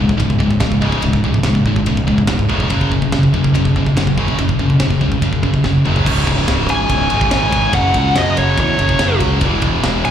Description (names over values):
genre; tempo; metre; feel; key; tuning
heavy metal; 143 BPM; 4/4; straight; C# minor; A4 = 437 Hz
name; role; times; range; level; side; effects
heavy high-gain guitar; riff; 0.0-10.1 s; C#2 to F#3; -16 LUFS; equal; distortion
fuzz fingered electric bass; bass; 0.0-10.1 s; C#1 to F#2; -18 LUFS; equal; overdrive
tight metal drum kit; drums; 0.1-10.1 s; crash cymbal, kick drum, ride cymbal, snare drum, toms; -20 LUFS; equal; none
high-gain lead guitar; melody; 6.7-10.1 s; C#5 to G#5; -17 LUFS; equal; distortion, slapback echo, ping-pong delay
room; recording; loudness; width
small room reverb; live gig heard through the venue's PA, club reverb; -13 LUFS; side -9 dB against mid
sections
0.0-6.1 A section; 6.1-10.1 B section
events
drum fill 5.6-6.1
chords
0.0 C#5; 2.7 F#5; 6.1 C#5; 7.7 F#5; 9.4 E5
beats
0.20 0.62 | 1.03 1.45 1.87 2.29 | 2.71 3.13 3.55 3.97 | 4.38 4.80 5.22 5.64 | 6.06 6.48 6.90 7.32 | 7.74 8.16 8.58 9.00 | 9.42 9.84